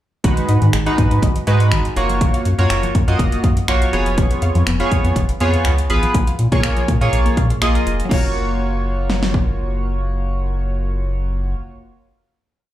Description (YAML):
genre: dance-pop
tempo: 122 BPM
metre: 4/4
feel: straight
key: F# major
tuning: A4 = 439 Hz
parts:
  - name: chorused retro synth keys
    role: accompaniment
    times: 0.2-11.6 s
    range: G#3 to D#5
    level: -21 LUFS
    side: right 1 dB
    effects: sidechain pumping, slapback echo
  - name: wide unison pluck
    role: arpeggios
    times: 0.2-11.6 s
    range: D#3 to E#5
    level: -28 LUFS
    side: left 1 dB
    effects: sidechain pumping, tape echo, slapback echo
  - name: round analog bass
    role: bass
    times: 0.2-11.6 s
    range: E#1 to A#2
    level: -18 LUFS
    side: equal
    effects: sidechain pumping
  - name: pop drum kit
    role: drums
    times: 0.2-9.5 s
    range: crash cymbal, finger snaps, hi-hat, kick drum, snare drum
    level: -19 LUFS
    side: equal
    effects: overdrive
room: light reverb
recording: live gig heard through the venue's PA, club reverb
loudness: -15 LUFS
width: side -13 dB against mid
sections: 0.2-8.1 pre-chorus; 8.1-12.0 final chord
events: none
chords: 0.2 G#m7; 2.0 F#maj7; 3.9 C#7/E#; 6.1 A#m7; 8.1 F#maj7